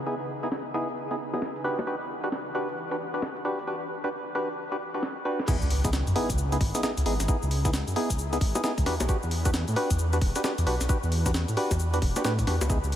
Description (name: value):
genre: UK garage, two-step garage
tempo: 133 BPM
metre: 4/4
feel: swing 62% on 16ths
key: unclear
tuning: A4 = 439 Hz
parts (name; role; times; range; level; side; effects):
- ethereal airy pad; sustained chords; 0.0-3.7 s; C#3 to B4; -40 LUFS; right 1 dB; ensemble chorus, built-in reverb, tremolo, sidechain pumping
- percussive organ stab; stabs; 0.1-12.8 s; B3 to B4; -29 LUFS; equal; chorus, diffuse ambient delay
- breakbeat sampler-style drum kit; drums; 0.1-13.0 s; bongos, crash cymbal, hi-hat, shaker, snare drum; -34 LUFS; left 1 dB; low-pass filter on hats, studio ambience, low-pass filter on perc, low-pass filter on snare, low-pass filter on cymbals
- electronic kick drum; drums; 5.5-12.8 s; none; -27 LUFS; equal; studio ambience
- impact; sound effects; 5.5-7.3 s; none; -38 LUFS; equal; none
- dark detuned saw bass; bass; 5.6-13.0 s; E1 to A2; -27 LUFS; equal; none
room: moderate huge ambient reverb, RT60 8.9 s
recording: dreamy mix soaked in reverb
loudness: -25 LUFS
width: side -11 dB against mid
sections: 0.0-5.5 A section; 5.5-13.0 B section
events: drum fill 5.0-5.5; drop 5.5-13.0; impact 5.5-7.3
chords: 0.0 C#m9; 1.6 Em9; 5.5 C#m9; 8.9 Em9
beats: | 0.07 0.52 0.97 1.42 | 1.87 2.32 2.77 3.22 | 3.67 4.12 4.58 5.03 | 5.48 5.93 6.38 6.83 | 7.28 7.73 8.19 8.64 | 9.09 9.54 9.99 10.44 | 10.89 11.34 11.79 12.25 | 12.70